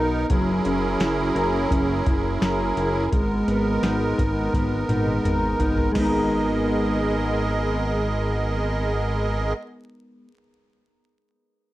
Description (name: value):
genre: dream pop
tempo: 85 BPM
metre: 4/4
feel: straight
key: G# minor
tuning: A4 = 440 Hz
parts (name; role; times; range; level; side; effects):
- musette accordion; sustained chords; 0.0-9.5 s; F#3 to D#5; -26 LUFS; right 2 dB; none
- mellow electric guitar; arpeggios; 0.0-10.3 s; F#3 to A#4; -25 LUFS; left 1 dB; lush chorus, analog delay
- chorused synth bass; bass; 0.0-9.5 s; F#1 to B1; -27 LUFS; equal; none
- soft vintage rhythm box; drums; 0.3-6.1 s; crash cymbal, hi-hat, kick drum, snare drum, toms; -25 LUFS; equal; none
room: wet studio reverb, RT60 0.6 s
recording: vinyl crackle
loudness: -20 LUFS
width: side -16 dB against mid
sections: 0.0-5.9 A section; 5.9-8.8 B section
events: drum fill 4.5-5.9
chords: 0.3 F#7; 3.1 G#madd9